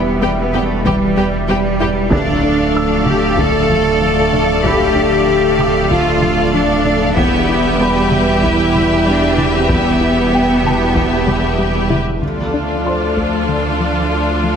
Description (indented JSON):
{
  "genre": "cinematic, hybrid orchestral and electronic film score",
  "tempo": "95 BPM",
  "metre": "4/4",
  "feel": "straight",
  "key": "D dorian",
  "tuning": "A4 = 439 Hz",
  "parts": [
    { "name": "bright trombone section", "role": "sustained chords", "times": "0.0-11.9 s", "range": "D3 to A3", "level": "-23 LUFS", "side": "right 3 dB", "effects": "none" },
    { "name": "mellow French horn section", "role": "sustained chords", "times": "0.0-14.6 s", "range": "F3 to A4", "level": "-20 LUFS", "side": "left 4 dB", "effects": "none" },
    { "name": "warm analog pad", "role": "sustained chords", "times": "0.0-14.6 s", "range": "F3 to F5", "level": "-24 LUFS", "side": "equal", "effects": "chorus" },
    { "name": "soft round pluck", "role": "arpeggios", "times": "0.0-14.6 s", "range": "D3 to E4", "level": "-24 LUFS", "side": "left 2 dB", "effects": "chorus, digital delay" },
    { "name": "clear symphonic cello section", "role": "bass", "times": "0.0-14.6 s", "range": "D2 to A4", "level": "-20 LUFS", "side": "right 3 dB", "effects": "none" },
    { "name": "saturated sub bass", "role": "bass", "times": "0.0-12.2 s", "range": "D1 to E1", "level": "-24 LUFS", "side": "equal", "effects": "none" },
    { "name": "felt-muted upright piano", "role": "texture", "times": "0.0-14.6 s", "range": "A4 to E6", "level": "-27 LUFS", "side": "left 1 dB", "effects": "digital delay" },
    { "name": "rich studio violin section", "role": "melody", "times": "0.2-12.0 s", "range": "E5 to G5", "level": "-24 LUFS", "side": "left 3 dB", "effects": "none" },
    { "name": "rich studio violin section", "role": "second line", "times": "0.2-14.6 s", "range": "A4 to F5", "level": "-25 LUFS", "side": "left 3 dB", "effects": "none" },
    { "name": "clear symphonic viola section", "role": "accompaniment", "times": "0.2-14.6 s", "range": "D4 to A4", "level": "-22 LUFS", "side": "equal", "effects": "none" },
    { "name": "warm symphonic double bass section", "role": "bass", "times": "0.2-14.6 s", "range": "D2 to E2", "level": "-21 LUFS", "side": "right 4 dB", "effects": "none" },
    { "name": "taiko ensemble", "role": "drums", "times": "0.8-13.5 s", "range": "none", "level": "-22 LUFS", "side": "equal", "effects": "none" }
  ],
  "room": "wet concert hall reverb, RT60 1.8 s",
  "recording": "heavily compressed radio sound, multiband compression",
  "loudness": "-12 LUFS",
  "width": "side -7 dB against mid",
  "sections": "0.0-12.2 A section; 12.2-14.6 B section",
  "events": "none",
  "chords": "0.0 Em; 2.1 Dm; 7.2 Em; 12.2 Dm",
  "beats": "0.22 0.85 1.49 | 2.12 2.75 3.38 4.01 | 4.64 5.28 5.91 6.54 | 7.17 7.80 8.43 9.06 | 9.70 10.33 10.96 11.59 | 12.22 12.86 13.49 14.12"
}